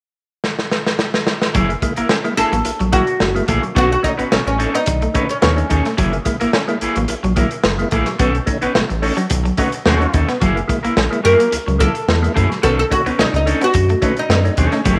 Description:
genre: funk.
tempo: 108 BPM.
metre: 4/4.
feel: straight.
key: unclear.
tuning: A4 = 443 Hz.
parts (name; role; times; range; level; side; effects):
crunchy breakbeat drum kit; drums; 0.4-15.0 s; hi-hat, kick drum, snare drum; -22 LUFS; equal; none.
electric guitar at the edge of break-up; accompaniment; 1.5-15.0 s; A#3 to B4; -25 LUFS; equal; none.
round analog bass; bass; 1.5-15.0 s; F#1 to F#2; -22 LUFS; equal; none.
electric guitar at the edge of break-up; riff; 1.6-14.9 s; F#3 to C#4; -26 LUFS; equal; none.
percussive tonewheel organ; stabs; 1.6-15.0 s; B2 to E4; -26 LUFS; equal; chorus vibrato.
oud; melody; 2.4-5.8, 11.2-14.7 s; C#4 to A#4; -20 LUFS; equal; none.
bright trombone; second line; 9.2-10.3 s; F#4; -28 LUFS; equal; none.
room: light reverb, small room ambience.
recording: none.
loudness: -17 LUFS.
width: mono.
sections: 0.0-1.5 A section; 1.5-15.0 B section.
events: drum fill 0.4-1.5; band accent 8.2-10.4.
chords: 0.0 N.C.; 1.5 F#9; 3.8 B9; 6.0 F#9; 8.2 B9; 10.4 F#9; 12.6 B9.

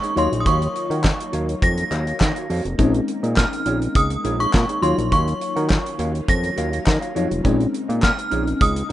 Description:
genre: early-eighties boogie funk.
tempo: 103 BPM.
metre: 4/4.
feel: straight.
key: unclear.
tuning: A4 = 440 Hz.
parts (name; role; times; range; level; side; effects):
synth chime; melody; 0.0-8.9 s; C6 to Bb6; -24 LUFS; right 1 dB; ensemble chorus.
FM electric piano with soft pad layer; accompaniment; 0.0-8.9 s; Gb3 to Db5; -25 LUFS; left 3 dB; chorus.
soft string machine; sustained chords; 0.0-8.9 s; Db3 to F4; -34 LUFS; equal; none.
mellow electric guitar; riff; 0.0-8.9 s; Eb4 to Gb5; -29 LUFS; right 4 dB; wide subtle chorus.
damped 70s drum kit; drums; 0.0-8.9 s; handclaps, hi-hat, kick drum, snare drum; -21 LUFS; equal; none.
fat analog bass; bass; 0.2-8.9 s; F1 to Eb3; -22 LUFS; equal; none.
group handclap; percussion; 1.0-8.2 s; none; -29 LUFS; left 6 dB; none.
room: light reverb.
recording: rough home demo mix, nothing above 10.8 kHz.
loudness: -18 LUFS.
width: side -13 dB against mid.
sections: 0.0-8.9 A section.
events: none.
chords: 0.2 Ebm9; 2.8 Bbm11; 4.8 Ebm9; 7.4 Bbm11.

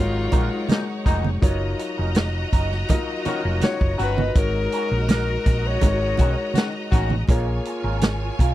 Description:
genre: lush 1970s-style soul.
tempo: 82 BPM.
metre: 4/4.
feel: straight.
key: Eb minor.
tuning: A4 = 443 Hz.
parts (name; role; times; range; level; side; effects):
breathy alto saxophone; melody; 0.0-6.7 s; F4 to Db5; -26 LUFS; left 4 dB; none.
bright studio string section; second line; 0.0-8.5 s; Eb4 to Bb5; -31 LUFS; right 1 dB; none.
warm baby grand piano; accompaniment; 0.0-8.5 s; Gb3 to Bb5; -29 LUFS; left 3 dB; none.
hollow-body short-scale fingered electric bass; bass; 0.0-8.5 s; F1 to Cb2; -24 LUFS; equal; none.
electric guitar through a small old amp; riff; 0.1-8.5 s; Gb3 to Db5; -32 LUFS; right 5 dB; wah.
clear horn section; stabs; 0.3-7.1 s; Bb2 to Gb4; -29 LUFS; left 7 dB; none.
vintage drum kit; drums; 0.3-8.5 s; hi-hat, kick drum, snare drum; -20 LUFS; equal; none.
congas; percussion; 0.3-8.2 s; none; -27 LUFS; right 6 dB; none.
room: little or no reverb.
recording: dry, close 1970s-style studio recording.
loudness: -19 LUFS.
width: side -14 dB against mid.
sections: 0.0-8.5 A section.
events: none.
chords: 0.0 Ab9sus4; 1.4 Ebm7; 4.4 Ab9sus4; 7.3 Bbm7.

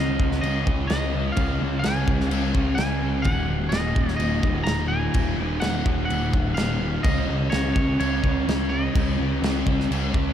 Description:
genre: rock, shoegaze and dream pop.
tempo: 127 BPM.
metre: 4/4.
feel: straight.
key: unclear.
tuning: A4 = 440 Hz.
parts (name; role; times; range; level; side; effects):
twangy electric guitar; melody; 0.0-10.3 s; Db5 to Bb5; -30 LUFS; equal; ping-pong delay.
thick fuzz guitar; riff; 0.0-10.3 s; Eb2 to Db4; -25 LUFS; equal; distortion, lush chorus.
growling picked electric bass; bass; 0.0-10.3 s; Eb1 to Db2; -27 LUFS; equal; overdrive.
loose indie drum kit; drums; 0.2-10.3 s; crash cymbal, kick drum, snare drum; -26 LUFS; equal; none.
room: moderate cathedral reverb, RT60 6.3 s.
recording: dreamy mix soaked in reverb.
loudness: -21 LUFS.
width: side -10 dB against mid.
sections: 0.0-10.3 A section.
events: none.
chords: 0.0 Db5; 3.3 Ebm; 7.0 Db5.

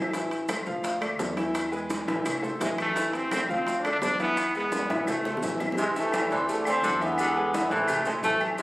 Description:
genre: latin, salsa.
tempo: 170 BPM.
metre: 4/4.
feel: straight.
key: A harmonic minor.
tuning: A4 = 439 Hz.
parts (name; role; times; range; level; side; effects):
bright upright piano; accompaniment; 0.0-8.6 s; E3 to F5; -30 LUFS; left 1 dB; none.
upright bass; bass; 0.0-8.6 s; A1 to E2; -40 LUFS; equal; none.
timbales and agogo bells; percussion; 0.0-8.6 s; none; -36 LUFS; right 2 dB; none.
bongos and cowbell; percussion; 0.1-8.6 s; none; -37 LUFS; left 1 dB; none.
congas; percussion; 0.1-8.6 s; none; -35 LUFS; equal; none.
maracas; percussion; 0.1-8.6 s; none; -42 LUFS; equal; none.
claves; percussion; 0.5-8.6 s; none; -37 LUFS; equal; none.
brilliant trombone; melody; 2.6-5.6 s; G#3 to D4; -28 LUFS; equal; none.
bright trombone section; melody; 5.8-8.6 s; C3 to C4; -27 LUFS; equal; none.
breathy baritone saxophone; second line; 5.8-8.6 s; C3 to A3; -29 LUFS; equal; none.
room: moderate large studio reverb, RT60 1.1 s.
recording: recorded on a phone in the room, club reverb.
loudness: -24 LUFS.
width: side -18 dB against mid.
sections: 0.0-5.8 A section; 5.8-8.6 B section.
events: drum fill 4.7-5.8.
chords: 0.0 Am; 0.8 Dmadd9; 1.6 E; 2.3 Am; 3.7 Dmadd9; 4.4 E; 5.1 Am; 6.5 Dsus2; 7.2 E7; 7.9 Am.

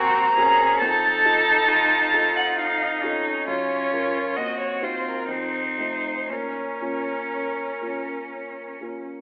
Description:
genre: classical, slow romantic movement for piano quartet.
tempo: 58-69 BPM.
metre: 3/4.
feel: rubato.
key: Bb minor.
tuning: A4 = 440 Hz.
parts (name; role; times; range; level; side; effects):
warm violin; melody; 0.0-8.8 s; Bb4 to Bb5; -26 LUFS; equal; none.
rich cello; second line; 0.0-8.8 s; C4 to A4; -28 LUFS; equal; none.
rich violin; second line; 0.0-9.1 s; C4 to Gb4; -29 LUFS; equal; none.
dark grand piano; accompaniment; 0.0-9.2 s; Eb2 to Bb4; -34 LUFS; equal; none.
room: moderate scoring stage reverb, RT60 1.9 s.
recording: telephone sound.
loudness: -22 LUFS.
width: mono.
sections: 0.0-9.2 A section.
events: none.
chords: 0.0 Cm7b5/Eb; 0.8 F7; 3.5 Gbmaj7; 4.4 Cdim/Eb; 5.3 F7; 6.3 Bbm.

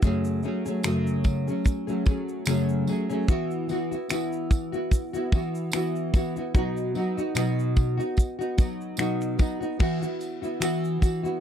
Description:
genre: acoustic pop.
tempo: 74 BPM.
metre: 4/4.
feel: swing 55% on 16ths.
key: E major.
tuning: A4 = 440 Hz.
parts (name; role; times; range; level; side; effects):
nylon-string guitar; accompaniment; 0.0-11.4 s; F#2 to G#4; -26 LUFS; equal; double-tracked left and right.
modern studio drum kit; drums; 0.0-11.4 s; crash cymbal, finger snaps, kick drum, shaker; -22 LUFS; equal; none.
tambourine; percussion; 0.0-11.2 s; none; -43 LUFS; right 9 dB; none.
room: little or no reverb.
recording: dry, close 1970s-style studio recording.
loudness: -24 LUFS.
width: side -9 dB against mid.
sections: 0.0-9.8 A section; 9.8-11.4 B section.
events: none.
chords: 0.0 F#madd9; 3.3 Esus2; 6.5 B; 9.8 Esus2.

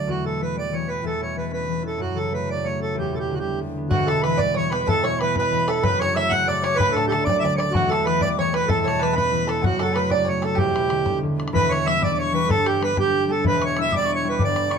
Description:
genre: celtic folk, Celtic jig.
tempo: 126 BPM (dotted quarters).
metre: 6/8.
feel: straight.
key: E dorian.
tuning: A4 = 440 Hz.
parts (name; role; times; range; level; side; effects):
accordion; melody; 0.0-14.8 s; F#4 to F#5; -23 LUFS; right 4 dB; none.
concert harp; accompaniment; 0.0-14.8 s; D1 to F#4; -25 LUFS; left 2 dB; none.
bluegrass banjo; second line; 3.9-11.2 s; F#4 to F#5; -28 LUFS; right 3 dB; none.
bright reedy wooden flute; second line; 3.9-14.8 s; F#5 to F#6; -28 LUFS; left 6 dB; none.
bodhran; percussion; 3.9-14.8 s; none; -26 LUFS; left 2 dB; none.
room: moderate studio reverb, RT60 0.8 s.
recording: none.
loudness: -19 LUFS.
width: side -6 dB against mid.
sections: 0.0-3.9 A section; 3.9-11.5 A section; 11.5-14.8 B section.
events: none.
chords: 0.1 Em; 1.0 Aadd9/E; 2.0 F#m; 3.0 Em7; 3.9 Em; 4.9 Aadd9/E; 5.8 F#m; 6.8 D; 7.7 Em; 8.7 Aadd9/E; 9.6 F#m; 10.6 Em7; 12.5 G; 13.4 Em7.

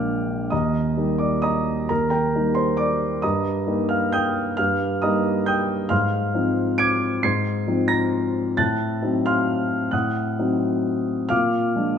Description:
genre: classical, piano waltz.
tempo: 133 BPM.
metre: 3/4.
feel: uneven beats, rubato.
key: Eb major.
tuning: A4 = 440 Hz.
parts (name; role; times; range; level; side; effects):
warm concert grand piano; solo; 0.0-12.0 s; Bb1 to D7; -20 LUFS; equal; none.
room: moderate recital hall reverb, RT60 1.3 s.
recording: none.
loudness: -20 LUFS.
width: side -7 dB against mid.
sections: 0.0-12.0 A section.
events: none.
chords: 0.0 Bb7; 0.5 Eb; 3.2 Eb/G; 5.9 Fm7/Ab; 8.6 Adim7; 11.3 Bb7.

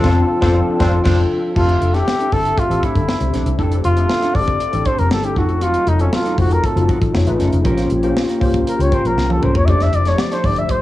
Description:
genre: polished 1980s jazz-funk pop.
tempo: 118 BPM.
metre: 4/4.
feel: straight.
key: F major.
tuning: A4 = 440 Hz.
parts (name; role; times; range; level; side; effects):
breathy flugelhorn; melody; 0.0-10.8 s; Db4 to E5; -20 LUFS; equal; cassette tape.
warm horn section; second line; 0.0-1.2 s; C4 to F4; -28 LUFS; right 2 dB; cassette tape.
tine electric piano; accompaniment; 0.0-10.8 s; A3 to E5; -20 LUFS; left 2 dB; medium stereo tremolo, ensemble chorus, cassette tape.
chorused pulse-width pad; sustained chords; 0.0-10.8 s; F3 to E5; -28 LUFS; right 1 dB; cassette tape.
mellow electric guitar; riff; 0.0-10.7 s; C4 to C5; -27 LUFS; right 3 dB; analog chorus, cassette tape.
vintage muted fingered electric bass; bass; 0.0-10.6 s; F1 to Db2; -18 LUFS; left 1 dB; none.
tight funk drum kit; drums; 0.0-10.8 s; crash cymbal, hi-hat, kick drum, snare drum, toms; -21 LUFS; equal; cassette tape.
room: light reverb, small room ambience.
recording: home recording on cassette.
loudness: -14 LUFS.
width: side -15 dB against mid.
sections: 0.0-1.6 A section; 1.6-10.8 B section.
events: band accent 0.0-1.6; flugelhorn solo 1.6-10.8; drum fill 9.2-9.7.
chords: 0.0 F6; 1.6 Fmaj13; 5.4 F7b9; 7.1 F7alt; 7.7 Bbm6; 9.7 Fmaj13.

